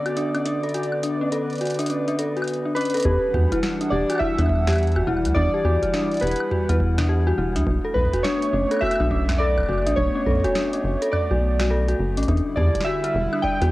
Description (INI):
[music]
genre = IDM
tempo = 104 BPM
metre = 4/4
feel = swing 62% on 16ths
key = E minor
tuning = A4 = 441 Hz
[part]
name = warbly lo-fi synth keys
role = melody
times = 0.0-13.7 s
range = B4 to G5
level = -25 LUFS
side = right 1 dB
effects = chorus, tape echo
[part]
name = hollow soft pad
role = sustained chords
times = 0.0-13.7 s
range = D3 to F#5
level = -30 LUFS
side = right 1 dB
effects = chorus
[part]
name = dark detuned synth bell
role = arpeggios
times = 0.1-13.7 s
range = C#4 to D5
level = -25 LUFS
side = left 2 dB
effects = chorus, tape echo
[part]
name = booming analog drum machine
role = drums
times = 0.1-13.7 s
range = hi-hat, snare drum, toms, woodblock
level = -30 LUFS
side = equal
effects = overdrive, cassette tape
[part]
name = rubbery square bass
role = bass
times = 3.1-13.7 s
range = E1 to E2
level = -21 LUFS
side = equal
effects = none
[part]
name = electronic kick drum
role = drums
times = 3.1-13.6 s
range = none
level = -30 LUFS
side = equal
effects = overdrive, cassette tape
[sound]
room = light reverb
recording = home recording on cassette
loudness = -19 LUFS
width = side -18 dB against mid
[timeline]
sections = 0.0-3.1 A section; 3.1-13.7 B section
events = none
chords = 0.0 Bm7; 3.1 Em9; 7.7 Bm9; 12.3 Em7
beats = 0.17 | 0.74 1.32 1.90 2.48 | 3.05 3.63 4.21 4.78 | 5.36 5.94 6.51 7.09 | 7.67 8.24 8.82 9.40 | 9.98 10.55 11.13 11.71 | 12.28 12.86 13.44